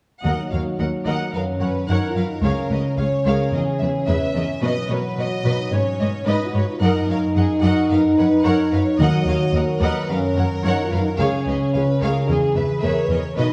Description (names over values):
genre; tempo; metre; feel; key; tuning
cinematic, heroic adventure film score; 110 BPM; 4/4; straight; Eb minor; A4 = 437 Hz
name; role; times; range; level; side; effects
rich symphonic violin section; melody; 0.2-13.5 s; Db5 to Gb5; -33 LUFS; equal; none
rich symphonic viola section; accompaniment; 0.2-13.5 s; Ab4 to Eb5; -31 LUFS; equal; none
dark French horn section; sustained chords; 0.2-13.5 s; F#3 to B4; -24 LUFS; equal; none
concert harp; arpeggios; 0.2-13.5 s; Gb2 to B4; -29 LUFS; equal; none
rich studio cello section; bass; 0.2-13.4 s; Db2 to B2; -25 LUFS; equal; none
timpani; percussion; 0.3-1.0, 9.0-9.8 s; Eb3; -28 LUFS; equal; none
warm symphonic violin section; second line; 1.3-13.5 s; Gb4 to E5; -32 LUFS; equal; none
room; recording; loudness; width
moderate scoring stage reverb, RT60 1.6 s; dark, warm production; -20 LUFS; mono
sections
0.3-13.5 A section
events
none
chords
0.3 Ebm; 1.4 Gb; 2.4 Db; 3.5 E; 4.6 B; 5.7 Abm; 6.8 Ebm/Gb; 7.9 Gb; 9.0 Ebm; 10.1 Gb; 11.2 Db; 12.3 E